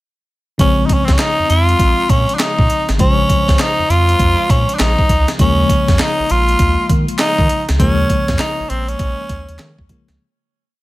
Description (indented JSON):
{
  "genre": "R&B, new jack swing",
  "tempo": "100 BPM",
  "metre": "4/4",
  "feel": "swing 63% on 16ths",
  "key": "Bb minor",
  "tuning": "A4 = 440 Hz",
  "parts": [
    { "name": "raspy tenor saxophone", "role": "melody", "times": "0.6-9.8 s", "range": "C4 to F4", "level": "-16 LUFS", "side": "equal", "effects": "none" },
    { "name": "FM electric piano with auto-pan", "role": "accompaniment", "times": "0.6-10.2 s", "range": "Db3 to C5", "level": "-21 LUFS", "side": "left 2 dB", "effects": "none" },
    { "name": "round analog bass", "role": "bass", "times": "0.6-10.2 s", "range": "Ab1 to Eb3", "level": "-17 LUFS", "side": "equal", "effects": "none" },
    { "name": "breakbeat sampler-style drum kit", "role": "drums", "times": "0.6-10.2 s", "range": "handclaps, hi-hat, kick drum, snare drum", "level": "-17 LUFS", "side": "equal", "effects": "none" }
  ],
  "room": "little or no reverb",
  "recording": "none",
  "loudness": "-12 LUFS",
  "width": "side -18 dB against mid",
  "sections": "0.6-10.2 verse",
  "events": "fade-out 7.8-10.2",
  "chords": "0.6 Bbm7; 5.4 Eb7sus4",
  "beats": "| 0.59 1.19 1.79 2.39 | 2.99 3.59 4.19 4.79 | 5.39 5.99 6.59 7.19 | 7.79 8.39 8.99 9.59"
}